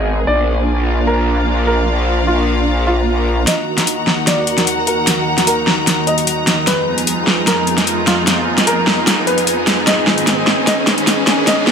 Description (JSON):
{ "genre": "heavy wobble dubstep", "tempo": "150 BPM", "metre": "4/4", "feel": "half-time", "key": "Eb harmonic minor", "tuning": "A4 = 442 Hz", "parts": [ { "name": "dark baby grand piano", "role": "melody", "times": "0.0-11.7 s", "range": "F4 to Eb5", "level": "-20 LUFS", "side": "equal", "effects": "low-pass filter, ping-pong delay" }, { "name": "supersaw pad", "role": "sustained chords", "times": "0.0-11.7 s", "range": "Eb2 to Ab4", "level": "-21 LUFS", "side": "right 1 dB", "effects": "phaser, low-pass filter" }, { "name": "growl bass", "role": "bass", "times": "0.0-3.5 s", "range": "Ab1 to Bb1", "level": "-16 LUFS", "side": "equal", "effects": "chorus, overdrive" }, { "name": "bright symphonic string section", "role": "texture", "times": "0.0-11.7 s", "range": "Cb4 to Bb5", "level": "-20 LUFS", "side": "left 2 dB", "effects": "none" }, { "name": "dubstep drum kit", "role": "drums", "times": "3.5-11.7 s", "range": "hi-hat, snare drum", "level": "-15 LUFS", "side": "equal", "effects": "none" }, { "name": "riser", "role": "sound effects", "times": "5.3-11.7 s", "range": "none", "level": "-23 LUFS", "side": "equal", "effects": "none" } ], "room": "moderate lush hall reverb, RT60 1.7 s", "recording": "high-pass filter, low-pass filter", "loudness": "-12 LUFS", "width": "side -6 dB against mid", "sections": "0.0-3.5 A section; 3.5-11.7 B section", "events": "build-up 3.5-11.7; drum fill 3.5-11.7; filter sweep on supersaw synth 3.5-11.7; filter sweep on grand piano 3.5-11.7; riser 5.3-11.7", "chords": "0.3 Bb; 3.5 Ebm; 6.7 Fdim; 9.9 Abm" }